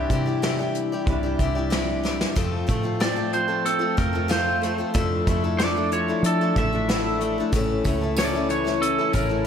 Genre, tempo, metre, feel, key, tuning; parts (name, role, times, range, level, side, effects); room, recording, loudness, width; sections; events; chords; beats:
folk rock and heartland rock; 93 BPM; 4/4; straight; A4 = 440 Hz
picked steel-string acoustic guitar; accompaniment; 0.0-9.5 s; F2 to D5; -28 LUFS; left 5 dB; slapback echo
electric guitar through a small old amp; riff; 0.0-9.5 s; F2 to F4; -27 LUFS; left 1 dB; slapback echo
deep dub picked electric bass; bass; 0.0-9.5 s; A1 to F3; -28 LUFS; equal
soft brush drum kit; drums; 0.1-9.3 s; hi-hat, kick drum, snare drum; -27 LUFS; equal
lightly driven lead guitar; melody; 3.0-9.5 s; A4 to E5; -25 LUFS; right 3 dB; slapback echo
tonewheel organ; sustained chords; 7.5-9.5 s; C#3 to E4; -36 LUFS; equal
tambourine; percussion; 7.5-9.3 s; -40 LUFS; right 8 dB
moderate lush hall reverb, RT60 1.8 s, small room ambience; big arena sound; -20 LUFS; side -8 dB against mid
0.0-2.4 A section; 2.4-9.5 B section
drum fill 2.0-2.4
0.0 Cadd9; 2.4 F; 4.9 Dmadd9/F; 7.5 A
0.43 1.07 1.72 | 2.36 3.01 3.65 4.30 | 4.95 5.59 6.24 6.88 | 7.53 8.17 8.82 9.46